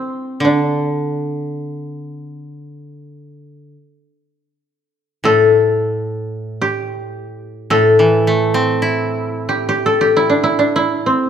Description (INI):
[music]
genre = japanese traditional, Japanese chamber music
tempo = free time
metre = none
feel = none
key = D suspended pentatonic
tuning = A4 = 439 Hz
[part]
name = koto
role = melody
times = 0.0-11.3 s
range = C4 to A4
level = -15 LUFS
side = left 1 dB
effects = none
[part]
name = koto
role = accompaniment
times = 0.0-11.1 s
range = A2 to E4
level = -20 LUFS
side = right 1 dB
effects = none
[sound]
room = moderate recital hall reverb, RT60 1.5 s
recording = none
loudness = -14 LUFS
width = side -8 dB against mid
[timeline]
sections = 0.0-11.3 A section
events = none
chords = none